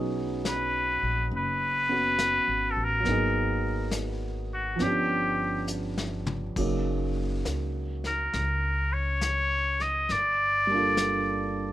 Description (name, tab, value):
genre	jazz ballad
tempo	68 BPM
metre	4/4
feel	swing 67% on 8ths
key	F# major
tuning	A4 = 440 Hz
part	dark baby grand piano	accompaniment	0.0-11.7 s	F3 to A4	-31 LUFS	right 2 dB	none
part	upright bass	bass	0.0-11.7 s	F#1 to C#2	-32 LUFS	equal	none
part	vintage brush drum kit	drums	0.4-11.7 s	brushed snare drum, crash cymbal, hi-hat, kick drum, snare drum, toms	-36 LUFS	left 3 dB	none
part	trumpet with straight mute	melody	0.5-11.7 s	F#4 to D#5	-26 LUFS	left 1 dB	plate reverb
room	light reverb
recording	none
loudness	-25 LUFS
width	side -14 dB against mid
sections	0.0-11.7 A section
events	drum fill 5.7-6.6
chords	0.0 B69; 3.0 G#m9; 4.8 G7#11; 6.6 F#69; 10.1 Gm7